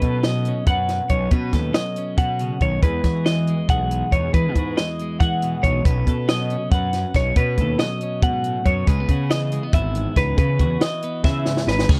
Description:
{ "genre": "math rock and midwest emo", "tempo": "278 BPM (eighths)", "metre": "7/8", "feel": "straight", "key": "unclear", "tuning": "A4 = 440 Hz", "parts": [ { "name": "twelve-string electric guitar", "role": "accompaniment", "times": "0.0-12.0 s", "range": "E2 to B4", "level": "-30 LUFS", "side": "equal", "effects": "none" }, { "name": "twelve-string electric guitar", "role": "arpeggios", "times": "0.0-11.9 s", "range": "B4 to F#5", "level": "-27 LUFS", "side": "equal", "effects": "none" }, { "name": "fuzz picked electric bass", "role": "bass", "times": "0.0-12.0 s", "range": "G#1 to E3", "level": "-26 LUFS", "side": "equal", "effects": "overdrive" }, { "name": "compact cocktail drum kit", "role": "drums", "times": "0.0-12.0 s", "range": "crash cymbal, hi-hat, kick drum, snare drum", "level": "-22 LUFS", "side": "equal", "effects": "none" } ], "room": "little or no reverb", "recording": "dark, warm production", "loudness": "-21 LUFS", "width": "mono", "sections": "0.0-11.9 A section", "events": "drum fill 11.2-11.9", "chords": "0.0 B9; 2.8 Emaj9; 5.9 B9; 8.9 C#m9" }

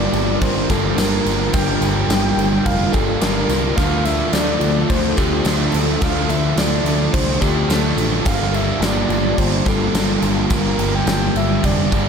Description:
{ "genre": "rock, shoegaze and dream pop", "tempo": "107 BPM", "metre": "4/4", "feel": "straight", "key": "unclear", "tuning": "A4 = 442 Hz", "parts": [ { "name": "breathy flute-like synth lead", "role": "melody", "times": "0.0-12.1 s", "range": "G4 to G5", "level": "-24 LUFS", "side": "left 1 dB", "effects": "chorus, ping-pong delay" }, { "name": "airy breathy pad", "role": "sustained chords", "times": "0.0-12.1 s", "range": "D3 to Bb4", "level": "-25 LUFS", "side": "left 1 dB", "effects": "chorus" }, { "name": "biting overdriven guitar", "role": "riff", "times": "0.0-12.1 s", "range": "G2 to D4", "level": "-22 LUFS", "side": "right 9 dB", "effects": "reverse reverb" }, { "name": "thick fuzz guitar", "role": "riff", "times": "0.0-12.1 s", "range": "G2 to D4", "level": "-23 LUFS", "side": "left 9 dB", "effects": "distortion, wide subtle chorus" }, { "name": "growling picked electric bass", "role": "bass", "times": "0.0-12.1 s", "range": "F1 to D2", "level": "-22 LUFS", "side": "equal", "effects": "overdrive" }, { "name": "huge arena drum kit", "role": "drums", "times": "0.1-12.1 s", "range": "crash cymbal, kick drum, snare drum", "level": "-21 LUFS", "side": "equal", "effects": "none" }, { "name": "tambourine", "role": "percussion", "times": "0.1-12.1 s", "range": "none", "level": "-36 LUFS", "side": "left 10 dB", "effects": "none" } ], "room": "moderate plate reverb, RT60 2.1 s", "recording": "dreamy mix soaked in reverb", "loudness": "-15 LUFS", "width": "side -6 dB against mid", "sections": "0.0-12.1 A section", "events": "none", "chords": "0.0 Gm7; 3.8 Dm; 8.3 Gm7" }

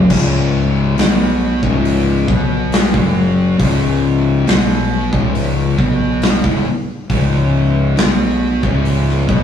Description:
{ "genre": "stoner and doom metal", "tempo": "69 BPM", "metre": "4/4", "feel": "straight", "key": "C# minor", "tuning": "A4 = 436 Hz", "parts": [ { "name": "fuzz guitar", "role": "riff", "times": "0.0-9.4 s", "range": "C#2 to B3", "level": "-18 LUFS", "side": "right 2 dB", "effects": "distortion" }, { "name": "thick fuzz guitar", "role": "riff", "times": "0.0-9.4 s", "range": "C#2 to B3", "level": "-18 LUFS", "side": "left 4 dB", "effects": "distortion" }, { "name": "fuzz fingered electric bass", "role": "bass", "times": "0.0-9.4 s", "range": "C#1 to B1", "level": "-19 LUFS", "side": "left 1 dB", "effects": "overdrive" }, { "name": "big rock drum kit", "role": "drums", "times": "0.1-9.4 s", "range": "crash cymbal, hi-hat, kick drum, snare drum", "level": "-17 LUFS", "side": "equal", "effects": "none" } ], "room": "moderate stone room reverb, RT60 1.2 s", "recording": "rough rehearsal-room recording, tube saturation, small room reverb", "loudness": "-12 LUFS", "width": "side -8 dB against mid", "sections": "0.1-9.4 A section", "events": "none", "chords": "none" }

